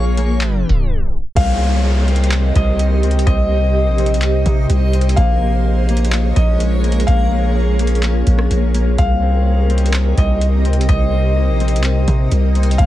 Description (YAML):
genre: hip hop, atmospheric cloud-rap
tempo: 126 BPM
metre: 4/4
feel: half-time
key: unclear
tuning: A4 = 441 Hz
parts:
  - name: felt-muted upright piano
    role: melody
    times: 0.0-12.9 s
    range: Eb5 to F5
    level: -24 LUFS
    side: left 1 dB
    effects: tape echo
  - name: ethereal airy pad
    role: sustained chords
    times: 0.0-12.9 s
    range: C3 to Eb5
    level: -22 LUFS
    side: equal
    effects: ensemble chorus, built-in reverb, tremolo, sidechain pumping
  - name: Celtic harp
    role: arpeggios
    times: 0.0-12.9 s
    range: Bb3 to C4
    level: -28 LUFS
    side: left 5 dB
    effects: tape echo
  - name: long sustained 808-style bass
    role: bass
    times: 0.0-12.9 s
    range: Bb1 to C3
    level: -15 LUFS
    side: equal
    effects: none
  - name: backwards swelling texture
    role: texture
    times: 0.0-12.9 s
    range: Ab3 to Db5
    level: -29 LUFS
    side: right 2 dB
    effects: built-in reverb
  - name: booming analog drum machine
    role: drums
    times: 0.2-12.9 s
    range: crash cymbal, handclaps, hi-hat, kick drum, rim click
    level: -18 LUFS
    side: equal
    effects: none
  - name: downlifter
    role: sound effects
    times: 1.4-5.2 s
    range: none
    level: -29 LUFS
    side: equal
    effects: none
room: light reverb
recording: heavily compressed radio sound, tape stop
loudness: -13 LUFS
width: side -14 dB against mid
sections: 0.0-1.4 A section; 1.4-12.9 B section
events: tape stop 0.4-1.4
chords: 0.0 Bbm7; 1.4 Cm7; 5.2 Bbm7; 9.0 Cm7